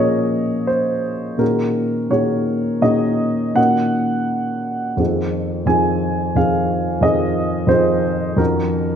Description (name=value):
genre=classical, impressionist solo piano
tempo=80-92 BPM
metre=5/4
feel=rubato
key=unclear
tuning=A4 = 440 Hz
part: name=warm grand piano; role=solo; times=0.0-9.0 s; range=F2 to Ab5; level=-16 LUFS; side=equal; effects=none
room=wet recital hall reverb, RT60 1.7 s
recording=nothing above 10.4 kHz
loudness=-16 LUFS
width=side -8 dB against mid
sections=0.0-9.0 A section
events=none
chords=0.0 Bbm7; 1.4 Gb69/Bb; 3.6 Ebm7/Bb; 5.0 Fm7; 8.4 Ebm7/F